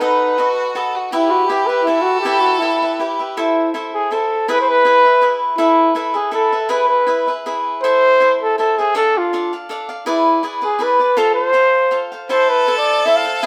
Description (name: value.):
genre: mexican folk, mariachi.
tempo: 161 BPM.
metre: 3/4.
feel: swing 53% on 8ths.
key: E harmonic minor, A harmonic minor from 3.4 s.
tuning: A4 = 440 Hz.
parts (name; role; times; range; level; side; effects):
dark trumpet; melody; 0.0-13.5 s; E4 to F5; -17 LUFS; equal; none.
rich violin; second line; 0.0-3.4, 12.3-13.5 s; D#4 to A4; -25 LUFS; equal; none.
cavaquinho; accompaniment; 0.0-13.5 s; D4 to F5; -22 LUFS; equal; none.
room: wet studio reverb, RT60 0.9 s.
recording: band playing live in one room.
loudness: -16 LUFS.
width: mono.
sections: 0.0-3.4 A section; 3.4-13.5 B section.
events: none.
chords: 0.0 B7; 1.1 Em; 3.4 Am; 4.5 E; 5.6 Asus2; 6.7 E; 7.8 Am; 8.9 Dm; 10.1 E7; 11.2 F; 12.3 Am.